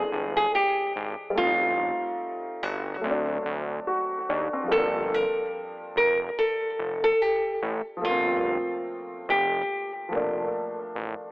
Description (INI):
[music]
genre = hip hop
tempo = 72 BPM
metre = 4/4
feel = swing 57% on 16ths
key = G minor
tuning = A4 = 445 Hz
[part]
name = nylon-string guitar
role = melody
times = 0.0-9.9 s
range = F4 to Bb4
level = -25 LUFS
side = equal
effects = analog delay
[part]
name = warm upright piano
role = accompaniment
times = 0.0-11.3 s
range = E3 to F#4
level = -30 LUFS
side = equal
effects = cassette tape, analog delay
[part]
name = fat analog bass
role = bass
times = 0.0-11.2 s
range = F1 to Eb2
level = -31 LUFS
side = equal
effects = none
[sound]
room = wet spring reverb, RT60 2.6 s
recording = echo-heavy mix, telephone sound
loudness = -24 LUFS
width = side -22 dB against mid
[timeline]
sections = 0.0-11.3 A section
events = none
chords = 0.0 E7alt; 1.4 Am7b5; 3.0 D7; 4.7 Gm9